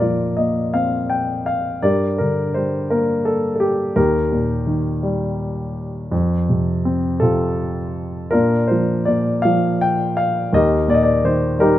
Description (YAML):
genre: classical, lyrical solo piano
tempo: 55 BPM (dotted quarters)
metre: 6/8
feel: rubato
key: Bb major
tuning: A4 = 440 Hz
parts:
  - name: warm grand piano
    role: solo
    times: 0.0-11.8 s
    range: Eb2 to G5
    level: -16 LUFS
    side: left 1 dB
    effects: none
room: light reverb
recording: close, detailed microphones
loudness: -17 LUFS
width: side -13 dB against mid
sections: 0.0-11.8 A section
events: none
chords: 0.0 Bbsus2; 1.8 Gm; 4.0 Eb; 6.1 F; 8.3 Bb; 10.5 Eb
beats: 0.74 | 1.83 2.91 | 3.97 5.03 | 6.12 7.22 | 8.34 9.44 | 10.53 11.60